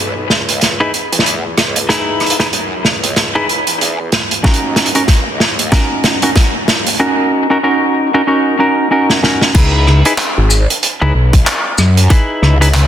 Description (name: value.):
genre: glitch hop.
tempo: 94 BPM.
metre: 4/4.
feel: swing 59% on 16ths.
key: C# dorian.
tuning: A4 = 440 Hz.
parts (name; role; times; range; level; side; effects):
growl bass; bass; 0.0-12.9 s; G#1 to F#2; -15 LUFS; equal; chorus, tube saturation, high-pass filter.
vintage drum kit; drums; 0.3-12.9 s; crash cymbal, handclaps, hi-hat, rim click, shaker, snare drum; -14 LUFS; right 1 dB; soft clipping on snare.
semi-hollow electric guitar; stabs; 0.8-12.7 s; C#4 to B4; -15 LUFS; equal; sidechain pumping, ping-pong delay.
electronic kick drum; drums; 4.4-12.3 s; none; -10 LUFS; equal; none.
room: moderate lush hall reverb, RT60 2.1 s.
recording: dense, heavily limited modern master.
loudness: -10 LUFS.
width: side -10 dB against mid.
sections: 0.0-9.6 A section; 9.6-12.9 B section.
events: build-up 0.0-9.6; drum fill 0.0-7.0, 9.1-9.6; drop 9.6-12.9.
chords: 0.0 C#m9; 4.4 D#m7; 9.6 C#m9.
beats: 0.61 1.25 | 1.89 2.53 3.17 3.81 | 4.45 5.08 5.72 6.36 | 7.00 7.64 8.28 8.91 | 9.55 10.19 10.83 11.47 | 12.10 12.74.